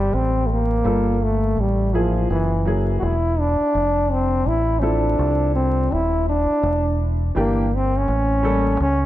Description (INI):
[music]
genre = hip hop, jazz-hop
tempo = 83 BPM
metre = 4/4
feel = swing 62% on 16ths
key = unclear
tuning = A4 = 439 Hz
[part]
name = warm trombone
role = melody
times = 0.0-9.1 s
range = E3 to F#4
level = -20 LUFS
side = equal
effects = ping-pong delay
[part]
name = warm upright piano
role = accompaniment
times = 0.0-8.7 s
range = E3 to A4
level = -25 LUFS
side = equal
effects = none
[part]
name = deep dub fingered electric bass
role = bass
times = 0.0-9.1 s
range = D#1 to C#2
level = -21 LUFS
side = equal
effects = none
[sound]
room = moderate lush hall reverb, RT60 2.4 s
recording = dreamy mix soaked in reverb, vinyl crackle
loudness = -18 LUFS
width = side -14 dB against mid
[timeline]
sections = 0.0-9.1 A section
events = none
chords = 0.0 Am; 0.8 Gm9; 2.3 F#9; 3.7 Fmaj7; 6.6 Em7b5; 8.1 A7b9